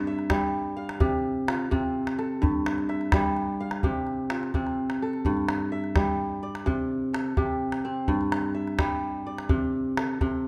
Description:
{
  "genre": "west african traditional, West African string and xylophone music",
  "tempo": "85 BPM (dotted quarters)",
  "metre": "12/8",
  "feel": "straight",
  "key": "unclear",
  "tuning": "A4 = 444 Hz",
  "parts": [
    { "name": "kora", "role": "arpeggios", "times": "0.0-10.5 s", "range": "G2 to F5", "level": "-29 LUFS", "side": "equal", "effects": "none" },
    { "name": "calabash", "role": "percussion", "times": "0.2-10.3 s", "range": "none", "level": "-32 LUFS", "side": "equal", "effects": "none" }
  ],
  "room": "moderate recital hall reverb, RT60 1.6 s",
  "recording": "none",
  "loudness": "-27 LUFS",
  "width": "mono",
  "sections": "0.0-5.2 A section; 5.2-10.5 B section",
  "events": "none",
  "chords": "0.0 Fmaj9/G; 1.0 C5; 2.4 Fmaj9/G; 3.8 C5; 5.2 G5; 6.7 C5; 8.1 G5; 9.5 Amadd11/C",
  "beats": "0.30 1.00 1.71 | 2.42 3.12 3.83 4.54 | 5.24 5.95 6.66 7.37 | 8.08 8.79 9.50 10.21"
}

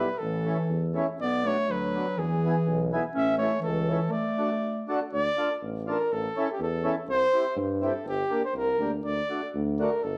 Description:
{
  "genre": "alpine folk, alpine dance band",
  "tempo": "122 BPM",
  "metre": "2/4",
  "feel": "straight",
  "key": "D major",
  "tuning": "A4 = 440 Hz",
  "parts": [
    { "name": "warm flugelhorn", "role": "melody", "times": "0.0-10.2 s", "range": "G4 to E5", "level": "-31 LUFS", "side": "equal", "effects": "none" },
    { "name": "mellow accordion", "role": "accompaniment", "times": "0.0-9.9 s", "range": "A3 to A4", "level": "-34 LUFS", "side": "equal", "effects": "none" },
    { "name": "clear tuba", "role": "bass", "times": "0.0-10.2 s", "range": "G1 to G2", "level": "-35 LUFS", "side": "equal", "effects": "none" },
    { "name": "warm clarinet", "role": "second line", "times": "0.2-4.9 s", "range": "E3 to C#4", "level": "-31 LUFS", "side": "equal", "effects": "none" }
  ],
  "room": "wet large studio reverb, RT60 1.0 s",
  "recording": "band playing live in one room",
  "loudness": "-27 LUFS",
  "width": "mono",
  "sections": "0.0-5.1 A section; 5.1-10.2 B section",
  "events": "break 4.1-5.1",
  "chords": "0.2 A; 1.2 Bm; 2.2 E; 3.2 A; 4.1 D; 5.1 Dm; 6.1 A; 7.1 C; 8.1 Gm; 9.1 D",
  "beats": "| 0.22 0.71 | 1.20 1.70 | 2.19 2.68 | 3.16 3.65 | 4.13 4.63 | 5.13 5.62 | 6.11 6.60 | 7.08 7.57 | 8.06 8.56 | 9.05 9.55 | 10.04"
}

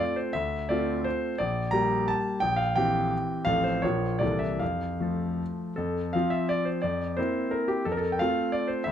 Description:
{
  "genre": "classical, romantic triple-time dance for piano with dotted rhythms",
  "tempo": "144-187 BPM",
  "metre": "3/4",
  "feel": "rubato",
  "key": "F major",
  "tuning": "A4 = 440 Hz",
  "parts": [
    { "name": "clear grand piano", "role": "solo", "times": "0.0-8.9 s", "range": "A1 to Bb5", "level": "-25 LUFS", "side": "equal", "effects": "none" }
  ],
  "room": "moderate large studio reverb, RT60 0.8 s",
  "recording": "faint mains hum",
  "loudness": "-25 LUFS",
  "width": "side -9 dB against mid",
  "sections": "0.0-5.8 A section; 5.8-8.9 A section",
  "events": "none",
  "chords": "0.4 Dm7; 1.4 Gm/Bb; 2.4 C7/Bb; 3.5 F/A; 3.8 Bbm; 4.2 C13; 4.6 F; 6.8 C7/F; 7.8 F",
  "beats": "0.02 | 0.35 0.70 1.06 | 1.38 1.73 2.08 | 2.42 2.76 3.12 | 3.47 3.83 4.23 | 4.61 5.01 5.41 | 5.77 6.14 6.50 | 6.83 7.18 7.52 | 7.85 8.19 8.52 | 8.85"
}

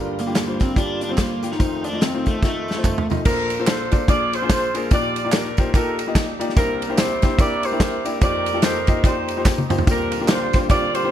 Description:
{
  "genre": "uptempo gospel",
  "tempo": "145 BPM",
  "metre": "4/4",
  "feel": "swing 60% on 8ths",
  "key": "Bb major",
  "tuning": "A4 = 440 Hz",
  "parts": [
    { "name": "clear grand piano", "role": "accompaniment", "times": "0.0-11.1 s", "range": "F1 to Eb5", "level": "-25 LUFS", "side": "left 4 dB", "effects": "none" },
    { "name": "tonewheel organ", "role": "sustained chords", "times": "0.0-3.2, 9.9-11.1 s", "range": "D3 to F4", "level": "-31 LUFS", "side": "right 4 dB", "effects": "fast rotary speaker, chorus vibrato" },
    { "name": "warm studio string section", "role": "sustained chords", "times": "0.0-3.2 s", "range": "G3 to F4", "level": "-36 LUFS", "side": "left 2 dB", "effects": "none" },
    { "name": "overdriven slide guitar", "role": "melody", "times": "0.2-3.1 s", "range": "A3 to Eb4", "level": "-26 LUFS", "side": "equal", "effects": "none" },
    { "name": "natural country drum kit", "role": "drums", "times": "0.2-11.0 s", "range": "crash cymbal, hi-hat, kick drum, ride cymbal, snare drum, toms", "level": "-20 LUFS", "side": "equal", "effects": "none" },
    { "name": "tambourine and handclaps", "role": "percussion", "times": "0.2-11.0 s", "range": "none", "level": "-33 LUFS", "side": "right 3 dB", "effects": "none" },
    { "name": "mellow saxophone section", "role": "melody", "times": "3.3-11.1 s", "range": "D4 to D5", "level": "-23 LUFS", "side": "right 1 dB", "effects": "slapback echo" }
  ],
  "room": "light reverb, studio reverb",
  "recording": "dark, warm production",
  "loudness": "-18 LUFS",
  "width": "side -10 dB against mid",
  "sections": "0.0-3.3 A section; 3.3-11.1 B section",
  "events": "drum fill 2.4-3.3, 9.5-9.9",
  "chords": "0.0 Gm7; 1.6 F7; 3.3 Bbmaj9; 4.1 Bb7; 4.9 Ebmaj9/Bb; 6.6 C9; 8.2 F9sus4; 9.9 Bb69",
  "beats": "0.35 0.77 1.18 | 1.60 2.01 2.43 2.84 | 3.25 3.67 4.08 4.50 | 4.91 5.32 5.74 6.15 | 6.57 6.98 7.39 7.81 | 8.22 8.63 9.05 9.46 | 9.88 10.29 10.70"
}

